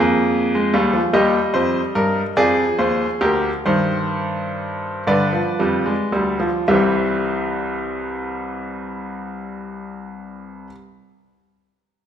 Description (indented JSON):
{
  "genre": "classical, baroque-style 4-part fugue for grand piano",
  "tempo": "35-52 BPM (dotted quarters)",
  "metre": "6/8",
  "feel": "straight",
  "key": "unclear",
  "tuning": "A4 = 440 Hz",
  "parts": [
    { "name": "bright baby grand piano", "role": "solo", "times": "0.0-10.7 s", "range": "C2 to E5", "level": "-18 LUFS", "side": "equal", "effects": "none" }
  ],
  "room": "wet recital hall reverb, RT60 1.8 s",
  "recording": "recorded in a church or concert hall",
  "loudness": "-17 LUFS",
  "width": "side -9 dB against mid",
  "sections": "0.0-6.7 A section; 6.7-10.1 B section",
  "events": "slowing down 0.0-6.7",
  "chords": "0.0 Fm; 1.1 Cm/Eb; 2.4 Ddim; 3.7 Cm/G; 5.1 G7; 6.7 C"
}